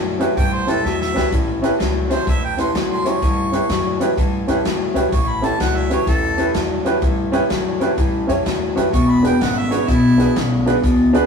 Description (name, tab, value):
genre	electric blues shuffle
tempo	126 BPM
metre	4/4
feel	swing 65% on 8ths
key	A mixolydian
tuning	A4 = 440 Hz
part	electric guitar through a small old amp	riff	0.0-11.3 s	E2 to F#3	-20 LUFS	left 3 dB	none
part	upright bass	bass	0.0-11.2 s	E1 to G2	-25 LUFS	left 1 dB	none
part	dark baby grand piano	accompaniment	0.2-11.2 s	C#4 to C#5	-20 LUFS	right 2 dB	none
part	swinging big-band drum kit	drums	0.2-11.2 s	hi-hat, kick drum, snare drum	-22 LUFS	equal	none
part	bright harmonica	second line	0.4-10.3 s	E4 to C#6	-23 LUFS	right 2 dB	overdrive, slapback echo
room	moderate studio reverb, RT60 0.6 s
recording	rough rehearsal-room recording, small room reverb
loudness	-16 LUFS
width	side -6 dB against mid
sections	0.0-1.3 A section; 1.3-11.3 A section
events	harmonica solo 0.0-11.3; drum fill 0.8-1.3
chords	0.0 A7; 8.9 E7